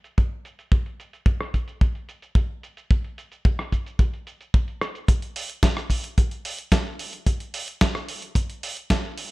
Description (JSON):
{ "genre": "nu-disco", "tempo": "110 BPM", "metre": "4/4", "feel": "straight", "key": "none", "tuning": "none", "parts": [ { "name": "dusty soul sampler-style drum kit", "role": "drums", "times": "0.0-9.3 s", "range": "hi-hat, rim click, shaker, snare drum", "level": "-27 LUFS", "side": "right 1 dB", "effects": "low-pass filter on hats, studio reverb, low-pass filter on perc, low-pass filter on snare" }, { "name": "kick drum", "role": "drums", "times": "0.2-9.0 s", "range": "none", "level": "-20 LUFS", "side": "equal", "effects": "studio reverb" } ], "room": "little or no reverb", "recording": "none", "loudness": "-22 LUFS", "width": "side -21 dB against mid", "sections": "0.0-5.1 A section; 5.1-9.3 B section", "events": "build-up 5.1-9.3", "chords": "none" }